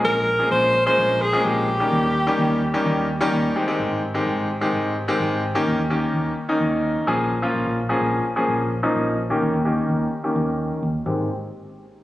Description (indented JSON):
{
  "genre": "dance-pop",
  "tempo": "128 BPM",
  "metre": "4/4",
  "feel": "straight",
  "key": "Ab major",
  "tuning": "A4 = 440 Hz",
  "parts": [
    { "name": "bright alto saxophone", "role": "melody", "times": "0.0-3.1 s", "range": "G4 to C5", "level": "-20 LUFS", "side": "equal", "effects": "dub echo" },
    { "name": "clear concert grand piano", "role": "accompaniment", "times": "0.0-11.3 s", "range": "Eb3 to Ab4", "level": "-21 LUFS", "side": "left 1 dB", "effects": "low-pass filter" },
    { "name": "vintage muted fingered electric bass", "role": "bass", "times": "0.0-11.3 s", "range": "Ab1 to Eb2", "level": "-26 LUFS", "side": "equal", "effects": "none" }
  ],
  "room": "light reverb",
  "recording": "recorded on a phone in the room, studio reverb, compression, faint mains hum",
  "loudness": "-19 LUFS",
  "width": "side -15 dB against mid",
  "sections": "0.0-3.6 A section; 3.6-11.1 B section",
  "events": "drop 0.0-3.6; filter sweep on grand piano 3.6-11.1",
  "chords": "0.0 Bbm7; 1.7 Eb7; 3.6 Abmaj7; 5.4 Eb7; 7.1 Bbm7; 9.2 Eb7; 11.1 Abmaj7",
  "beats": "0.28 0.75 1.22 | 1.68 2.15 2.62 3.09 | 3.56 4.03 4.50 4.97 | 5.43 5.90 6.37 6.84 | 7.31 7.78 8.25 8.72 | 9.18 9.65 10.12 10.59 | 11.06"
}